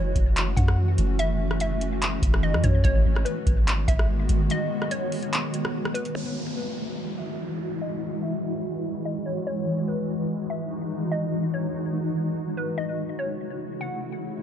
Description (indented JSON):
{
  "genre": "hip hop, atmospheric cloud-rap",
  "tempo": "145 BPM",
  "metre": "4/4",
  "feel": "half-time",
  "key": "E major",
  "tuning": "A4 = 435 Hz",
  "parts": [
    { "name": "hollow square pluck", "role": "melody", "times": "0.0-14.0 s", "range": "B4 to F#5", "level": "-33 LUFS", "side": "left 1 dB", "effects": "chorus, low-pass filter, ping-pong delay" },
    { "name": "granular cloud pad", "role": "sustained chords", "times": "0.0-14.4 s", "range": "C#3 to F#4", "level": "-28 LUFS", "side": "equal", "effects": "built-in reverb, sidechain pumping, low-pass filter" },
    { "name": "soft 808-style bass", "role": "bass", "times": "0.0-4.5 s", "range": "F#1 to F#2", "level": "-23 LUFS", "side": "equal", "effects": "none" },
    { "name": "booming analog drum machine", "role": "drums", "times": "0.2-6.1 s", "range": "handclaps, hi-hat, kick drum, rim click", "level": "-24 LUFS", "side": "equal", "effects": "none" },
    { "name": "downlifter", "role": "sound effects", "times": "6.2-9.5 s", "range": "none", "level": "-37 LUFS", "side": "left 1 dB", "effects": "none" }
  ],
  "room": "little or no reverb",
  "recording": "nothing above 10.7 kHz",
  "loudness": "-23 LUFS",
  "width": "side -10 dB against mid",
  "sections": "0.0-6.2 A section; 6.2-14.4 B section",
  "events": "break 4.5-6.2; filter sweep 6.2-14.4",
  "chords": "0.0 F#m7; 2.8 G#m7; 6.2 Emaj9; 12.8 F#m7"
}